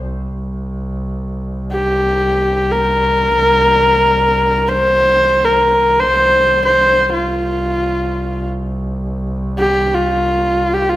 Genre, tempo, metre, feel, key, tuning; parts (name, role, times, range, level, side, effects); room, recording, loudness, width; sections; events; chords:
mongolian traditional; free time; A4 = 440 Hz
rich double bass; drone; 0.0-11.0 s; C2; -21 LUFS; equal
rich horsehead fiddle; melody; 1.7-11.0 s; F4 to C5; -12 LUFS; equal
wet recital hall reverb, RT60 1.4 s; -13 LUFS; side -15 dB against mid
0.0-11.0 A section